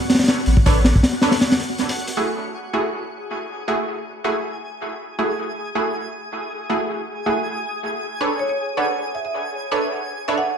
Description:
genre	drum and bass, jungle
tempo	159 BPM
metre	4/4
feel	straight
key	F# minor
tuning	A4 = 440 Hz
part	twinkling granular texture	texture	0.0-10.6 s	F#4 to G#5	-30 LUFS	left 1 dB	built-in reverb
part	crunchy breakbeat drum kit	drums	0.1-2.2 s	hi-hat, kick drum, snare drum	-16 LUFS	equal	analog delay
part	saturated sub bass	bass	0.5-1.0 s	A1 to B1	-17 LUFS	equal	none
part	orchestra-hit-like synth stab	stabs	0.7-10.4 s	A3 to C#5	-24 LUFS	right 2 dB	built-in reverb, dub echo
part	marimba with medium hard mallets	melody	8.4-10.6 s	C#5 to F#5	-27 LUFS	right 2 dB	dub echo
room	moderate plate reverb, RT60 1.3 s, small room reverb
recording	echo-heavy mix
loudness	-19 LUFS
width	side -7 dB against mid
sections	0.0-2.2 A section; 2.2-10.6 B section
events	drop 0.0-2.2; break 1.4-2.2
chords	0.0 Bm9; 2.2 F#m9; 8.2 Bm9

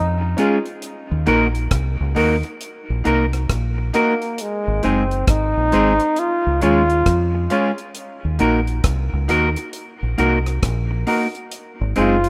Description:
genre	roots reggae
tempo	67 BPM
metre	4/4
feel	swing 63% on 16ths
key	Eb dorian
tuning	A4 = 438 Hz
part	warm trombone	melody	0.0-12.3 s	Ab3 to F4	-23 LUFS	equal	dub echo
part	deep dub fingered electric bass	bass	0.0-12.3 s	Gb1 to F2	-23 LUFS	equal	none
part	clean electric guitar	accompaniment	0.2-12.2 s	Ab3 to Bb4	-24 LUFS	equal	dub echo
part	clear upright piano	stabs	0.4-12.1 s	Db4 to Db5	-29 LUFS	equal	none
part	deep reggae drum kit	drums	0.4-12.3 s	hi-hat, kick drum, rim click	-24 LUFS	equal	none
room	moderate plate reverb, RT60 2.6 s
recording	rough home demo mix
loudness	-19 LUFS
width	mono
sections	0.0-12.3 A section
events	none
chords	0.0 Db; 0.8 Ebm; 4.4 Ab; 6.2 Db; 8.0 Ebm; 11.5 Ab

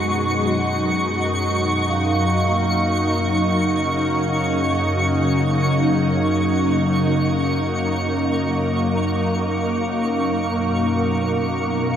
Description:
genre	ambient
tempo	free time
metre	none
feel	none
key	unclear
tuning	A4 = 440 Hz
part	soft additive organ-like pad	sustained chords	0.0-12.0 s	F#2 to F#4	-19 LUFS	equal	ensemble chorus, built-in reverb
part	twinkling granular texture	texture	0.0-12.0 s	C#6 to C#7	-26 LUFS	right 1 dB	built-in reverb
part	vibraphone with soft mallets	arpeggios	1.9-9.3 s	F#3 to E#5	-28 LUFS	left 1 dB	diffuse ambient delay
room	wet shimmer reverb, RT60 7.5 s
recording	cassette tape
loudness	-18 LUFS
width	side -9 dB against mid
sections	0.0-12.0 A section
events	fade-in on vibraphone 0.0-12.0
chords	0.0 G#m7/F#; 2.4 D#m7/F#; 9.2 Bmaj7/F#

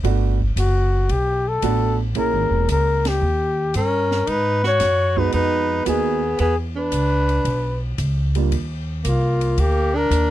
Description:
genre	jazz, small-group swing and bop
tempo	113 BPM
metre	4/4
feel	swing 69% on 8ths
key	unclear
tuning	A4 = 440 Hz
part	warm upright piano	accompaniment	0.0-8.5 s	G3 to Ab4	-25 LUFS	right 15 dB	none
part	upright bass	bass	0.0-10.3 s	Fb1 to Ab2	-21 LUFS	equal	none
part	open jazz drum kit	drums	0.0-10.3 s	hi-hat, kick drum, ride cymbal, snare drum	-34 LUFS	left 1 dB	none
part	warm flugelhorn	melody	0.6-10.3 s	F4 to Db5	-21 LUFS	left 3 dB	none
part	clear tenor saxophone	second line	3.8-10.3 s	Bb3 to Gb4	-25 LUFS	right 4 dB	none
room	little or no reverb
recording	dry, close 1970s-style studio recording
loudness	-18 LUFS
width	side -14 dB against mid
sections	0.0-10.3 A section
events	band accent 3.0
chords	0.0 Gmaj7; 2.2 Bbm7b5; 3.2 Eb7; 4.3 Abm7; 6.4 E5; 8.5 Eb5

